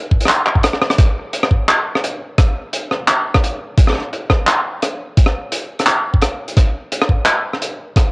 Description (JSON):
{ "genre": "drum and bass", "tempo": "172 BPM", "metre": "4/4", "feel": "swing 53% on 16ths, half-time", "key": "none", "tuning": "none", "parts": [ { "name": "electronic kick drum", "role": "drums", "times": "0.1-8.0 s", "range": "none", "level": "-12 LUFS", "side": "equal", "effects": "cassette tape" }, { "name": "crunchy breakbeat drum kit", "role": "drums", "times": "0.2-8.0 s", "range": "handclaps, hi-hat, rim click", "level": "-16 LUFS", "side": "equal", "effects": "cassette tape" } ], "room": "light reverb", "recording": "home recording on cassette", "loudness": "-14 LUFS", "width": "side -32 dB against mid", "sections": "1.0-8.1 A section", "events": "break 0.6-1.0; drum fill 0.7; band accent 0.9; drop 1.0-8.1", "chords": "none", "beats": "0.29 0.64 | 0.99 1.34 1.69 2.03 | 2.38 2.73 3.08 3.43 | 3.78 4.13 4.48 4.83 | 5.17 5.52 5.87 6.22 | 6.57 6.92 7.27 7.62 | 7.96" }